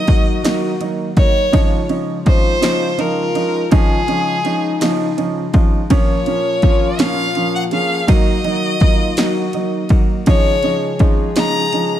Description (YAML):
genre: six-eight pop ballad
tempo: 55 BPM (dotted quarters)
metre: 6/8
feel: straight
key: Db major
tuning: A4 = 440 Hz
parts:
  - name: clear violin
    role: melody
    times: 0.0-12.0 s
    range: Ab4 to Bb5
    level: -20 LUFS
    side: left 1 dB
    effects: digital delay
  - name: mellow French horn section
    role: second line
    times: 0.0-12.0 s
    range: Eb4 to Ab4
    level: -25 LUFS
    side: left 5 dB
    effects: none
  - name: direct-recorded clean electric guitar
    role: arpeggios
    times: 0.0-12.0 s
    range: Bb2 to Gb4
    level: -28 LUFS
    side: left 10 dB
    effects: digital delay
  - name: warm baby grand piano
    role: accompaniment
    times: 0.1-12.0 s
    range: F3 to Eb4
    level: -20 LUFS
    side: right 4 dB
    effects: none
  - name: punchy analog drum machine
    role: drums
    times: 0.1-11.9 s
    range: kick drum, ride cymbal, snare drum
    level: -14 LUFS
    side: equal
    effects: overdrive
room: studio reverb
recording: dark, warm production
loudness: -13 LUFS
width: side -11 dB against mid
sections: 0.0-12.0 A section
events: none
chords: 0.0 Ebm; 1.5 Dbadd9; 5.9 Bbm; 8.1 Ebm; 10.3 Dbadd9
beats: 0.45 | 1.54 2.63 | 3.72 4.82 | 5.91 7.00 | 8.09 9.18 | 10.28 11.37